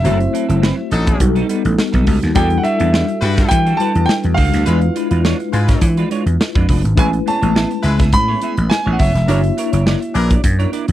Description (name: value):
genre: polished 1980s jazz-funk pop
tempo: 104 BPM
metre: 4/4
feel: swing 54% on 16ths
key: unclear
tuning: A4 = 444 Hz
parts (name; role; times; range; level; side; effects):
- clear grand piano; melody; 0.0-10.1 s; E5 to B5; -20 LUFS; right 1 dB; none
- warm horn section; second line; 0.0-10.3 s; E3 to B4; -23 LUFS; left 3 dB; none
- mellow tine electric piano; accompaniment; 0.0-10.9 s; G3 to C#5; -21 LUFS; left 3 dB; medium stereo tremolo, wide subtle chorus
- semi-hollow electric guitar; riff; 0.0-10.9 s; F#3 to E5; -24 LUFS; right 5 dB; analog chorus
- modern studio drum kit; drums; 0.0-10.9 s; hi-hat, kick drum, snare drum; -17 LUFS; equal; none
- vintage slap bass; bass; 0.1-10.9 s; E1 to E3; -16 LUFS; equal; none
room: little or no reverb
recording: dry, close 1970s-style studio recording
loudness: -13 LUFS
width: side -13 dB against mid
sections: 0.0-10.9 A section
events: none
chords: 0.0 F#m7b5; 1.2 B7b13; 2.4 Em11; 4.7 E7b9; 7.0 Amaj9; 9.3 F#7b13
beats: | 0.05 0.62 1.20 1.78 | 2.36 2.94 3.51 4.09 | 4.67 5.24 5.82 6.40 | 6.98 7.55 8.13 8.71 | 9.28 9.86 10.44